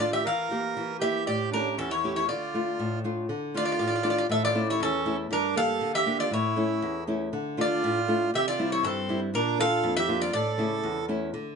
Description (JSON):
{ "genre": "greek folk, Greek bouzouki band", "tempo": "119 BPM", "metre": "2/4", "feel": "straight", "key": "D harmonic minor", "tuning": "A4 = 440 Hz", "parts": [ { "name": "Greek bouzouki", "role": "melody", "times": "0.0-11.1 s", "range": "A4 to F5", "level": "-28 LUFS", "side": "left 2 dB", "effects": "none" }, { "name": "accordion", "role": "second line", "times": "0.0-11.1 s", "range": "C4 to Bb4", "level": "-30 LUFS", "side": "right 7 dB", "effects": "none" }, { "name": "nylon-string guitar", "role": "accompaniment", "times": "0.0-11.6 s", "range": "E2 to G4", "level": "-29 LUFS", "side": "left 1 dB", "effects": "none" } ], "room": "wet small room reverb, RT60 0.5 s", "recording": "nothing above 10.4 kHz", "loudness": "-24 LUFS", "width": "side -5 dB against mid", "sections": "0.0-3.3 A section; 3.3-11.3 B section", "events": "none", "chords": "0.3 Edim; 1.3 A7; 2.3 Dm; 4.3 A; 5.3 Gm; 6.3 A; 7.3 Dm; 8.3 C; 9.3 Bb; 10.3 A" }